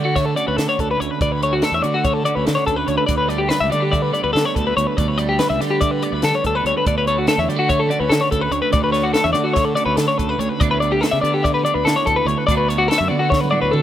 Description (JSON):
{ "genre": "math rock and midwest emo", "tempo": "288 BPM (eighths)", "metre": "9/8", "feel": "straight", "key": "unclear", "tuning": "A4 = 440 Hz", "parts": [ { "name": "twelve-string electric guitar", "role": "accompaniment", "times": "0.0-13.8 s", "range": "D2 to A4", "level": "-25 LUFS", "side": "right 11 dB", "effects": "none" }, { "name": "twelve-string electric guitar", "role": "arpeggios", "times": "0.0-13.8 s", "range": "F#4 to E5", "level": "-18 LUFS", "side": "left 3 dB", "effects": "harmonic tremolo, digital delay" }, { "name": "fuzz fingered electric bass", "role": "bass", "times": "0.0-13.8 s", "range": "C#2 to D3", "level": "-23 LUFS", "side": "right 1 dB", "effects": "overdrive" }, { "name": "compact cocktail drum kit", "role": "drums", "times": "0.2-13.8 s", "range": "hi-hat, kick drum, snare drum, toms", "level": "-23 LUFS", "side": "equal", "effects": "none" } ], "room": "light reverb, studio ambience", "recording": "rough home demo mix", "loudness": "-16 LUFS", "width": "side -11 dB against mid", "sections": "0.0-13.8 A section", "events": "drum fill 13.1-13.8", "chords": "0.0 Bm9/D; 3.1 A9sus4; 6.9 Bm9/D; 10.6 G69/D (rootless); 12.5 D6", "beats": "0.16 0.37 0.58 0.79 1.00 | 1.21 1.42 1.62 1.83 2.04 2.25 2.46 2.67 2.88 | 3.09 3.30 3.51 3.72 3.93 4.14 4.35 4.56 4.77 | 4.98 5.18 5.39 5.60 5.81 6.02 6.23 6.44 6.65 | 6.86 7.07 7.27 7.48 7.69 7.90 8.11 8.32 8.53 | 8.73 8.94 9.15 9.36 9.57 9.77 9.98 10.19 10.40 | 10.61 10.81 11.02 11.23 11.44 11.64 11.85 12.06 12.27 | 12.48 12.68 12.89 13.10 13.31 13.52 13.72" }